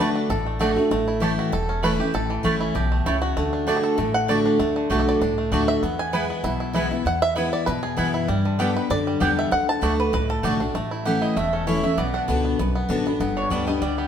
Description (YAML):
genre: bluegrass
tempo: 195 BPM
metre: 4/4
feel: swing 53% on 8ths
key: D major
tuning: A4 = 440 Hz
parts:
  - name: bluegrass banjo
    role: melody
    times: 0.0-14.1 s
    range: D3 to A5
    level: -26 LUFS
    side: right 2 dB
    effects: none
  - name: picked steel-string acoustic guitar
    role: accompaniment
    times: 0.0-14.1 s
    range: E2 to G4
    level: -23 LUFS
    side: left 1 dB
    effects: none
  - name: mandolin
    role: stabs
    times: 0.0-14.1 s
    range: A3 to A5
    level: -28 LUFS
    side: right 2 dB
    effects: none
  - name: upright bass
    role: bass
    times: 0.0-14.1 s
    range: E1 to G2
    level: -28 LUFS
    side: equal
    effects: none
room: wet stone room reverb, RT60 1.5 s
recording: band playing live in one room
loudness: -20 LUFS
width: side -8 dB against mid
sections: 0.9-10.7 A section; 10.7-14.1 A section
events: five-string banjo solo 0.0-10.7; mandolin solo 10.7-14.1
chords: 0.0 D; 0.9 A; 3.4 D; 5.8 E; 8.3 G; 9.5 D; 10.7 A; 12.0 Bm; 13.2 G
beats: 0.30 0.60 | 0.91 1.22 1.52 1.83 | 2.14 2.45 2.75 3.06 | 3.37 3.68 3.98 4.29 | 4.60 4.91 5.21 5.52 | 5.83 6.14 6.44 6.75 | 7.06 7.37 7.67 7.98 | 8.29 8.60 8.90 9.21 | 9.52 9.82 10.13 10.44 | 10.75 11.05 11.36 11.67 | 11.98 12.29 12.59 12.90 | 13.21 13.51 13.82